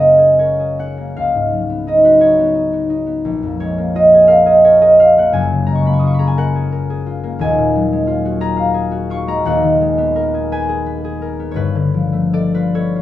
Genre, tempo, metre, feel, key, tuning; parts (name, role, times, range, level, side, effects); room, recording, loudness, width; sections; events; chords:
classical, solo harp piece; 58 BPM (dotted quarters); 6/8; uneven beats, rubato; F# major; A4 = 441 Hz
concert harp; solo; 0.0-13.0 s; D#1 to D#6; -12 LUFS; equal
little or no reverb; close, detailed microphones; -12 LUFS; side -14 dB against mid
0.0-13.0 A section
0.0 F#add9; 1.2 C#9sus4; 3.3 A#m7; 5.4 F#maj9; 7.4 D#m11; 9.5 G#m9/D#; 11.6 G9